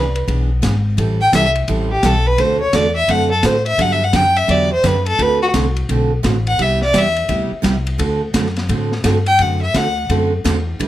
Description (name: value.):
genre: country, western swing.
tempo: 171 BPM.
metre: 4/4.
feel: swing 64% on 8ths.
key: unclear.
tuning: A4 = 437 Hz.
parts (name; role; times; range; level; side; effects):
rich fiddle; melody; 0.0-10.1 s; F#4 to G5; -16 LUFS; left 1 dB; none.
picked steel-string acoustic guitar; accompaniment; 0.0-10.9 s; C3 to B4; -20 LUFS; right 4 dB; none.
upright bass; bass; 0.0-10.9 s; G#1 to A2; -19 LUFS; left 1 dB; none.
vintage drum kit; drums; 0.2-10.9 s; hi-hat, kick drum, ride cymbal, snare drum; -24 LUFS; left 1 dB; none.
room: light reverb.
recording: none.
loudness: -14 LUFS.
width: side -14 dB against mid.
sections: 0.0-10.9 A section.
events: fiddle solo 0.0-10.9.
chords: 0.0 E7; 1.0 Am9; 2.4 D7; 3.8 Gmaj7; 5.2 D7; 6.6 Cmaj7; 8.0 D7.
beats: 0.28 0.63 | 0.98 1.33 1.68 2.03 | 2.38 2.73 3.08 3.43 | 3.78 4.13 4.48 4.83 | 5.18 5.53 5.88 6.23 | 6.58 6.94 7.29 7.64 | 7.99 8.34 8.69 9.04 | 9.39 9.74 10.10 10.45 | 10.80.